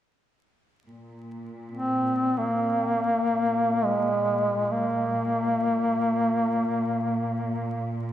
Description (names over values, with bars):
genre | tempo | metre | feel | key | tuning
caucasian folk | free time | none | none | unclear | A4 = 435 Hz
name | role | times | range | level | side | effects
warm studio cello section | drone | 0.9-8.1 s | Bb2 | -33 LUFS | equal | none
mellow duduk | melody | 1.7-7.9 s | Ab3 to C4 | -23 LUFS | equal | none
room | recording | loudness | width
wet church reverb, RT60 3.4 s | recorded in a church or concert hall, vinyl crackle | -23 LUFS | side -11 dB against mid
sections
0.9-8.1 A section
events
none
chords
none